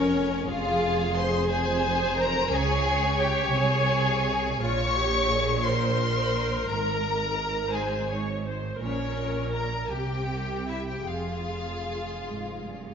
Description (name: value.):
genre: classical, slow romantic movement for string orchestra.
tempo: 50-60 BPM (dotted quarters).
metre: 6/8.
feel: rubato.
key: F minor.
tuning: A4 = 440 Hz.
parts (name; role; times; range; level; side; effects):
clear chamber violin section; melody; 0.0-12.9 s; Db5 to Db6; -31 LUFS; left 5 dB; none.
rich studio violin section; second line; 0.0-12.9 s; Db4 to Db5; -30 LUFS; left 1 dB; none.
clear symphonic viola section; accompaniment; 0.0-12.8 s; F4 to Db5; -30 LUFS; equal; none.
rich studio cello section; bass; 0.0-12.9 s; F2 to Db3; -31 LUFS; right 2 dB; none.
rich studio double bass section; bass; 0.0-12.9 s; F1 to Db2; -33 LUFS; right 4 dB; none.
room: wet scoring stage reverb, RT60 1.7 s.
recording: nothing above 7.5 kHz.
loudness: -24 LUFS.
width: side -7 dB against mid.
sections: 0.0-12.9 A section.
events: none.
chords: 0.0 Fm; 2.5 Db5; 4.6 Bbm; 6.7 Abadd9; 8.8 Bbm; 9.9 C5; 11.1 Fm.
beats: | 0.48 1.49 | 2.51 3.52 | 4.62 5.66 | 6.69 7.73 | 8.80 9.89 | 11.07 12.25.